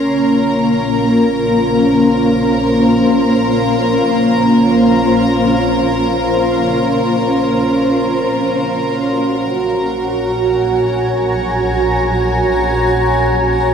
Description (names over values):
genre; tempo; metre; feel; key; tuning
ambient; free time; none; none; Bb minor; A4 = 440 Hz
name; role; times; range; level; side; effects
granular cloud pad; sustained chords; 0.0-13.7 s; Bb3 to C6; -13 LUFS; equal; built-in reverb
rich studio double bass section; bass; 0.0-13.7 s; Bb1; -24 LUFS; left 1 dB; none
bright chamber violin section; texture; 0.0-13.7 s; Bb4 to Bb5; -21 LUFS; equal; none
room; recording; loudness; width
wet concert hall reverb, RT60 2.1 s; dark, warm production; -12 LUFS; side -7 dB against mid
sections
0.0-13.7 A section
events
fade-in on double bass section 0.0-13.7; fade-out on violin section 0.0-13.7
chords
0.0 Bbm7; 8.5 Gb/Bb